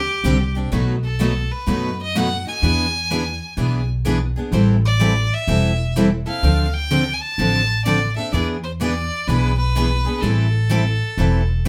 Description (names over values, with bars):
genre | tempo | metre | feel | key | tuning
acoustic string swing (jazz manouche) | 126 BPM | 4/4 | swing 65% on 8ths | A minor | A4 = 440 Hz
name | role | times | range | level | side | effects
clear violin | melody | 0.0-11.7 s | G4 to A5 | -26 LUFS | equal | none
upright bass | bass | 0.0-11.7 s | E1 to F#2 | -22 LUFS | equal | none
picked steel-string acoustic guitar | accompaniment | 0.2-11.7 s | B2 to A4 | -24 LUFS | equal | none
picked steel-string acoustic guitar | accompaniment | 0.2-11.7 s | B2 to B4 | -30 LUFS | equal | none
room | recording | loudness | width
wet studio ambience, RT60 0.5 s | band playing live in one room | -19 LUFS | mono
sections
0.0-11.7 A section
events
none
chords
0.0 D7sus4; 0.7 B7; 2.6 E7; 4.5 Am7; 6.4 Dm7; 8.3 E7; 10.2 Am7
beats
0.24 | 0.72 1.20 1.67 2.15 | 2.62 3.10 3.58 4.05 | 4.53 5.00 5.48 5.96 | 6.43 6.91 7.38 7.86 | 8.33 8.81 9.28 9.76 | 10.23 10.71 11.18 11.65